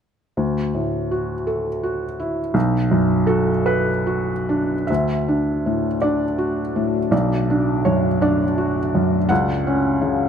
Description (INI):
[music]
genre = neoclassical piano and strings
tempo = 55 BPM (dotted quarters)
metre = 6/8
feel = rubato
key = unclear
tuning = A4 = 440 Hz
[part]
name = felt-muted upright piano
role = accompaniment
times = 0.4-10.3 s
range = B1 to F#5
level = -18 LUFS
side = equal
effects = none
[part]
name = deep dark ambient pad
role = sustained chords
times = 5.9-10.3 s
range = A3 to E5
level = -28 LUFS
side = left 4 dB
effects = chorus, built-in reverb
[sound]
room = light reverb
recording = close, detailed microphones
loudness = -18 LUFS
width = side -8 dB against mid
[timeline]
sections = 0.4-4.9 A section; 4.9-10.3 B section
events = none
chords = 0.4 Dadd9; 2.5 Bm7; 4.9 Dadd9; 7.1 Bm7; 9.3 A6/C#